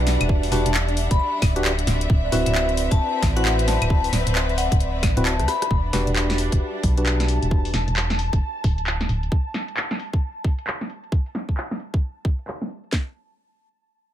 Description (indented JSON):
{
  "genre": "UK garage, two-step garage",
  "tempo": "133 BPM",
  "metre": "4/4",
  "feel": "swing 62% on 16ths",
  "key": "E minor",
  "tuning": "A4 = 440 Hz",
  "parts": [
    { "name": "ethereal airy pad", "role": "sustained chords", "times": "0.0-11.1 s", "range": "D5 to A5", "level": "-33 LUFS", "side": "right 3 dB", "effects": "ensemble chorus, built-in reverb, sidechain pumping" },
    { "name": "percussive organ stab", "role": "stabs", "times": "0.0-7.7 s", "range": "C4 to B4", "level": "-28 LUFS", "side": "equal", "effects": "chorus, dub echo" },
    { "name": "organ-like FM bass", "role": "bass", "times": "0.0-9.3 s", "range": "D1 to D2", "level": "-22 LUFS", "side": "equal", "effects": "none" },
    { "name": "clear symphonic string section", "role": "texture", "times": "0.0-7.5 s", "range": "G3 to F#5", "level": "-29 LUFS", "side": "left 2 dB", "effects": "sidechain pumping" },
    { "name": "house drum kit", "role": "drums", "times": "0.1-12.9 s", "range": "claves, handclaps, hi-hat, rim click, snare drum", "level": "-26 LUFS", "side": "equal", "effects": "low-pass filter on hats, low-pass filter on snare, low-pass filter on perc, low-pass filter on room" },
    { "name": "garage drum kit", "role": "drums", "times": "0.3-13.1 s", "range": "handclaps, kick drum, snare drum", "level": "-20 LUFS", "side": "equal", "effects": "none" },
    { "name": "vibraphone with medium hard mallets", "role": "melody", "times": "0.5-5.7 s", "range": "E5 to B5", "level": "-28 LUFS", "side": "left 4 dB", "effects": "dub echo" }
  ],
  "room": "digital ambience",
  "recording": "echo-heavy mix",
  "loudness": "-20 LUFS",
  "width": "side -11 dB against mid",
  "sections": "0.0-5.7 A section; 5.7-12.9 B section; 12.9-14.1 C section",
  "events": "drop 0.0-5.7; drum fill 5.4-5.7; filter sweep on drum 5.7-12.9; filter sweep on synth stab 5.7-7.5",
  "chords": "0.0 Em9; 1.9 D13; 5.7 Em9; 9.1 N.C."
}